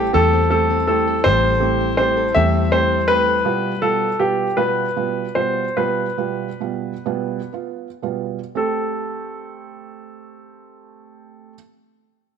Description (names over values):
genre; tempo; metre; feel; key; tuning
pop; 38-55 BPM (dotted quarters); 6/8; straight; A minor; A4 = 440 Hz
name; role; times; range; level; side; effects
clear concert grand piano; melody; 0.0-11.5 s; G4 to E5; -19 LUFS; left 1 dB; none
felt-muted upright piano; accompaniment; 0.0-11.5 s; B2 to G4; -24 LUFS; right 11 dB; none
fingerpicked plugged-in steel-string acoustic guitar; arpeggios; 0.0-4.0 s; G3 to A4; -26 LUFS; left 11 dB; none
vintage muted picked electric bass; bass; 0.0-3.4 s; A1 to E2; -21 LUFS; left 1 dB; none
room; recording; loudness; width
moderate echo chamber reverb, RT60 1.9 s, small room ambience; 1960s-style stereo with parts hard left and right; -17 LUFS; side -7 dB against mid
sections
0.0-8.5 A section; 8.5-11.6 B section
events
slowing down 3.5-8.5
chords
0.0 Am7; 3.5 G7/B; 8.5 Am7